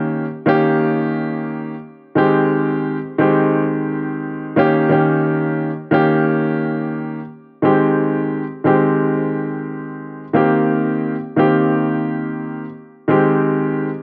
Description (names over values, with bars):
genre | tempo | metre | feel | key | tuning
hip hop | 88 BPM | 4/4 | swing 55% on 16ths | Ab major | A4 = 440 Hz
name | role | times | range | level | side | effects
warm grand piano | solo | 0.0-13.9 s | Eb3 to G4 | -18 LUFS | equal | cassette tape, high-pass filter, low-pass filter, slapback echo
room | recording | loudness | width
moderate plate reverb, RT60 2.6 s | dark, warm production | -17 LUFS | mono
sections
0.0-7.6 A section; 7.6-14.0 B section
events
none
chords
0.0 Eb7; 2.2 Abmaj7; 4.6 Eb7; 7.6 Abmaj7; 10.4 Cm7; 13.1 Abmaj7